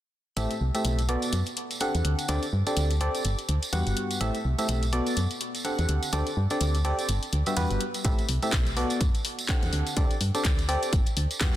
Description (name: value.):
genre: piano house.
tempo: 125 BPM.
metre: 4/4.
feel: swing 58% on 16ths.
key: unclear.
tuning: A4 = 437 Hz.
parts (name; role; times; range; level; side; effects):
barking FM electric piano; riff; 0.4-11.6 s; G2 to F#5; -29 LUFS; equal; chorus, sidechain pumping, low-pass filter, digital delay.
solid FM bass; bass; 0.4-11.5 s; G1 to G2; -27 LUFS; equal; sidechain pumping.
house drum kit; drums; 0.4-11.5 s; handclaps, hi-hat; -32 LUFS; left 2 dB; none.
tambourine; percussion; 0.4-11.6 s; none; -38 LUFS; right 3 dB; none.
electronic kick drum; drums; 8.0-11.5 s; none; -25 LUFS; equal; none.
room: light reverb.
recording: dense, heavily limited modern master.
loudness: -24 LUFS.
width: side -13 dB against mid.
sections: 0.4-11.6 A section.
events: filter sweep on FM bass 0.4-11.6.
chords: 0.4 Am7; 1.1 Bm7; 2.0 D7sus4; 3.2 Gmaj7; 4.2 Am7; 4.9 Bm7; 5.9 D7sus4; 7.1 Gmaj7; 8.0 Am7; 8.8 Bm7; 9.7 D7sus4; 10.9 Gmaj7.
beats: | 0.37 0.85 1.33 1.81 | 2.29 2.77 3.25 3.73 | 4.21 4.69 5.17 5.65 | 6.13 6.61 7.09 7.57 | 8.05 8.53 9.01 9.49 | 9.97 10.45 10.93 11.41.